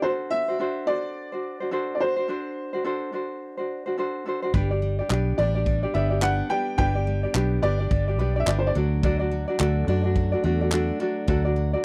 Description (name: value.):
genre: acoustic pop.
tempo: 107 BPM.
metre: 4/4.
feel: swing 60% on 16ths.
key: unclear.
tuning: A4 = 440 Hz.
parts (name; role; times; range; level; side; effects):
clear upright piano; melody; 0.0-8.7 s; C5 to G5; -30 LUFS; equal; none.
tenor ukulele; accompaniment; 0.0-11.8 s; D4 to D5; -30 LUFS; equal; none.
picked steel-string acoustic guitar; arpeggios; 4.5-11.8 s; F#3 to D4; -35 LUFS; equal; tape echo.
vintage muted fingered electric bass; bass; 4.5-11.7 s; G1 to F#2; -26 LUFS; equal; none.
natural country drum kit; drums; 4.5-11.4 s; handclaps, kick drum; -28 LUFS; equal; none.
room: little or no reverb.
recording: dry, close 1970s-style studio recording.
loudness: -25 LUFS.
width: mono.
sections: 0.0-4.5 A section; 4.5-11.8 B section.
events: none.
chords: 0.0 D7; 4.5 G; 8.8 D.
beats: | 0.03 0.59 1.16 1.72 | 2.29 2.85 3.41 3.98 | 4.54 5.10 5.66 6.22 | 6.79 7.35 7.91 8.47 | 9.03 9.60 10.16 10.72 | 11.28 11.84.